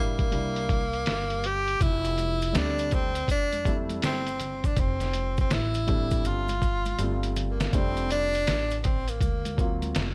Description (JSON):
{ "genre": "hip hop, jazz-hop", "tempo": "81 BPM", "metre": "4/4", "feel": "swing 64% on 16ths", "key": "F major", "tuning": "A4 = 439 Hz", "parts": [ { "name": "breathy tenor saxophone", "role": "melody", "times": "0.0-9.8 s", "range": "Bb3 to G4", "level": "-32 LUFS", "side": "equal", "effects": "none" }, { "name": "dark grand piano", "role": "accompaniment", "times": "0.0-10.1 s", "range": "F#3 to F4", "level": "-36 LUFS", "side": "equal", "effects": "none" }, { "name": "upright bass", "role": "bass", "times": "0.0-10.1 s", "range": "F1 to F2", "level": "-34 LUFS", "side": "equal", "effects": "none" }, { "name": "lo-fi sampler-style drum kit", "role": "drums", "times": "0.2-10.1 s", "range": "hi-hat, kick drum, snare drum", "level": "-30 LUFS", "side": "equal", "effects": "none" }, { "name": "maracas and congas", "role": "percussion", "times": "1.8-10.1 s", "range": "none", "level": "-45 LUFS", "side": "equal", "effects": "none" } ], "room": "light reverb, small room ambience", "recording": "none", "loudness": "-27 LUFS", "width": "mono", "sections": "0.0-7.7 A section; 7.7-10.1 B section", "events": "drum fill 7.0-7.7", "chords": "0.3 C9; 1.8 F6; 9.2 D7alt", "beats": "0.32 1.06 | 1.80 2.55 3.29 4.03 | 4.77 5.51 6.25 6.99 | 7.73 8.47 9.21 9.95" }